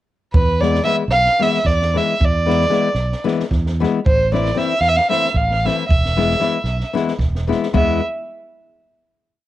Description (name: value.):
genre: balkan folk, Balkan wedding band.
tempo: 228 BPM (eighths).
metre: 7/8.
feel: straight.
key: E phrygian dominant.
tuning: A4 = 440 Hz.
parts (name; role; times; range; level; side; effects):
dark violin; melody; 0.3-8.0 s; B4 to F5; -18 LUFS; right 2 dB; cassette tape, plate reverb.
fingered electric bass; bass; 0.3-8.0 s; E1 to E2; -20 LUFS; right 1 dB; none.
compact cocktail drum kit; percussion; 0.3-8.0 s; kick drum, snare drum; -21 LUFS; right 1 dB; cassette tape.
nylon-string guitar; accompaniment; 0.6-8.0 s; E3 to E4; -20 LUFS; left 6 dB; cassette tape.
room: moderate booth ambience, RT60 0.3 s.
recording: home recording on cassette.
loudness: -15 LUFS.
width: side -14 dB against mid.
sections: 0.3-7.7 A section; 7.7-9.5 final chord.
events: none.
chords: 0.3 E; 4.0 Am; 5.9 E.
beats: | 0.35 0.61 0.88 1.14 1.41 1.67 1.94 | 2.20 2.46 2.73 2.99 3.26 3.52 3.79 | 4.05 4.31 4.58 4.84 5.10 5.37 5.63 | 5.89 6.16 6.42 6.68 6.95 7.21 7.47 | 7.74.